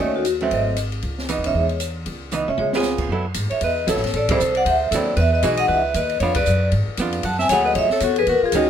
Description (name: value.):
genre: jazz, small-group swing and bop.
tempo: 232 BPM.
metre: 4/4.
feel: swing 59% on 8ths.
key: unclear.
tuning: A4 = 438 Hz.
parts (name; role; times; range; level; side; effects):
vibraphone with medium hard mallets; melody; 0.0-8.7 s; F#4 to A5; -20 LUFS; left 2 dB; none.
clear alto saxophone; second line; 0.0-8.7 s; D#3 to F#5; -26 LUFS; right 3 dB; none.
archtop guitar, miked and amplified; accompaniment; 0.0-8.7 s; D3 to A4; -23 LUFS; right 4 dB; none.
upright bass; bass; 0.0-8.7 s; F#1 to C#3; -24 LUFS; equal; none.
open jazz drum kit; drums; 0.0-8.6 s; crash cymbal, hi-hat, kick drum, ride cymbal, snare drum, toms; -28 LUFS; left 1 dB; none.
room: light reverb.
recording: minimal, uncompressed stereo recording.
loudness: -18 LUFS.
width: side -9 dB against mid.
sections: 0.0-3.1 A section; 3.1-8.7 B section.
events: drum fill 2.3-2.8; band accent 4.3, 6.3.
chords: 0.0 D#m7b5; 0.5 G#7b9; 1.0 C#m9; 2.6 C#7; 3.1 F#m11; 4.1 Am7; 4.7 D9; 5.2 Emaj9; 6.2 Fdim7; 7.2 F#m9.